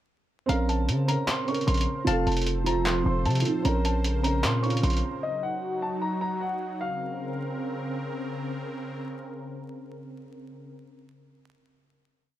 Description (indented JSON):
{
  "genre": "hip hop, trap",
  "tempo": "152 BPM",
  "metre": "4/4",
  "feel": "half-time",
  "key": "Bb harmonic minor",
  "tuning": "A4 = 442 Hz",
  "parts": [
    { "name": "dark grand piano", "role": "melody", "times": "0.5-8.0 s", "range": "Eb5 to Db6", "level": "-32 LUFS", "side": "left 1 dB", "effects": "low-pass filter" },
    { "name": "hollow square pluck", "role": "second line", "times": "0.5-2.8 s", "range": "F5 to A5", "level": "-37 LUFS", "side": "left 5 dB", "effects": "chorus, ping-pong delay" },
    { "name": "felt-muted upright piano", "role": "accompaniment", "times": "0.5-5.3 s", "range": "F3 to C5", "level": "-28 LUFS", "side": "right 4 dB", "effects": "low-pass filter" },
    { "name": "sweeping resonant pad", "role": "sustained chords", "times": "0.5-10.7 s", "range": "Db3 to C5", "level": "-34 LUFS", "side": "left 1 dB", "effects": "chorus" },
    { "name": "hard-hitting 808-style bass", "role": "bass", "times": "0.5-5.0 s", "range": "F1 to Db3", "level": "-26 LUFS", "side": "equal", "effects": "none" },
    { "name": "lo-fi sampler-style drum kit", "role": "drums", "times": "0.5-5.0 s", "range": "handclaps, hi-hat", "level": "-31 LUFS", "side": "equal", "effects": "none" }
  ],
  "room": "little or no reverb",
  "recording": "vinyl crackle",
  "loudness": "-25 LUFS",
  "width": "side -13 dB against mid",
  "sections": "0.5-6.8 hook; 6.8-10.0 final chord",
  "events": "none",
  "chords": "0.5 Bbmadd9; 2.1 F; 3.6 Bbmadd9; 5.2 Ebm; 6.8 Bbmadd9"
}